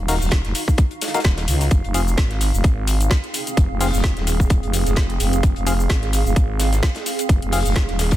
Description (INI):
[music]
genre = bass house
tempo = 129 BPM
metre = 4/4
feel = swing 56% on 16ths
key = unclear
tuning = A4 = 439 Hz
[part]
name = growling FM bass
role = bass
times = 0.0-8.2 s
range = Eb1 to Db2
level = -20 LUFS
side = equal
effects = tube saturation, sidechain pumping
[part]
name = granular cloud pad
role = texture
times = 0.0-8.2 s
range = C4 to F5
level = -27 LUFS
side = right 3 dB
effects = built-in reverb, sidechain pumping
[part]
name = percussive organ stab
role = stabs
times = 0.1-7.6 s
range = C4 to F5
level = -26 LUFS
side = left 3 dB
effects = chorus, cassette tape, sidechain pumping, digital delay
[part]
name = garage drum kit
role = drums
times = 0.1-8.2 s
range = hi-hat, shaker, snare drum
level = -26 LUFS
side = left 1 dB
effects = small room ambience
[part]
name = warm soul drum kit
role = drums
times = 0.1-8.2 s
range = hi-hat, snare drum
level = -33 LUFS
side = left 2 dB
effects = high-pass filter on hats, small room ambience, high-pass filter on snare, high-pass filter on room
[part]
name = electronic kick drum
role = drums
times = 0.3-8.2 s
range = none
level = -16 LUFS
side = equal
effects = small room ambience
[sound]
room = little or no reverb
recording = dense, heavily limited modern master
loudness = -17 LUFS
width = side -14 dB against mid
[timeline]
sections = 0.0-8.2 A section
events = none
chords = 0.0 Ebmadd9; 1.7 Fm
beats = 0.32 0.78 1.25 | 1.71 2.18 2.64 3.11 | 3.57 4.04 4.50 4.97 | 5.43 5.90 6.36 6.83 | 7.29 7.76